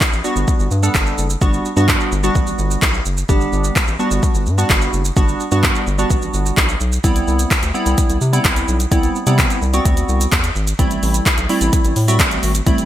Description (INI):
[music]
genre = dance-pop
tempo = 128 BPM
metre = 4/4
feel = straight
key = G major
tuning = A4 = 440 Hz
[part]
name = glassy digital keys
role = accompaniment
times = 0.0-12.9 s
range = G3 to A4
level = -20 LUFS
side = right 1 dB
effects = chorus
[part]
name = deep house drum kit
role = drums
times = 0.0-12.9 s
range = handclaps, hi-hat, kick drum, shaker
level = -17 LUFS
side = equal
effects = gated reverb
[part]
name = round analog bass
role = bass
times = 0.1-12.8 s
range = F#1 to C3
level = -18 LUFS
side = equal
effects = sidechain pumping
[sound]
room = light reverb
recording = bright 1980s-style digital production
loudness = -14 LUFS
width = side -12 dB against mid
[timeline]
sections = 0.0-12.9 A section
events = none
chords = 0.0 Gmaj7; 7.0 Cmaj7; 10.8 Am7